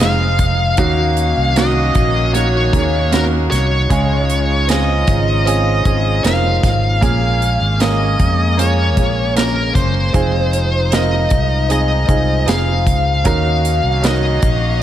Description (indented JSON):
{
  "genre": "pop ballad",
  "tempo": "77 BPM",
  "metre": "4/4",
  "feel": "straight",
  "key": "unclear",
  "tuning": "A4 = 439 Hz",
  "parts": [
    { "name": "high-gain lead guitar", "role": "melody", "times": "0.0-14.8 s", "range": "Bb4 to F5", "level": "-19 LUFS", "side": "left 1 dB", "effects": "distortion, slapback echo" },
    { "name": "clear baby grand piano", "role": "accompaniment", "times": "0.0-14.8 s", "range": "Bb2 to Bb4", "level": "-21 LUFS", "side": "right 4 dB", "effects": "slapback echo" },
    { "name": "warm studio string section", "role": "sustained chords", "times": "0.0-14.8 s", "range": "Db3 to F5", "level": "-23 LUFS", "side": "left 1 dB", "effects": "none" },
    { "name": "fingered electric bass", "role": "bass", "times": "0.0-14.8 s", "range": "F1 to F2", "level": "-17 LUFS", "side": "equal", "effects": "none" },
    { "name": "modern studio drum kit", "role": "drums", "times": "0.0-14.6 s", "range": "hi-hat, kick drum, snare drum", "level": "-19 LUFS", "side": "equal", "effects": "none" }
  ],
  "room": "light reverb",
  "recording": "none",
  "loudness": "-13 LUFS",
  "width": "side -11 dB against mid",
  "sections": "0.0-14.8 A section",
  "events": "none",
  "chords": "0.0 Fm7; 0.8 Ebm7; 3.9 Dbmaj7; 7.0 Bbm7; 10.1 Fm7; 13.3 Ebm7",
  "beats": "0.01 | 0.78 1.56 2.34 3.12 | 3.90 4.68 5.46 6.24 | 7.02 7.80 8.58 9.36 | 10.13 10.91 11.69 12.47 | 13.25 14.03 14.81"
}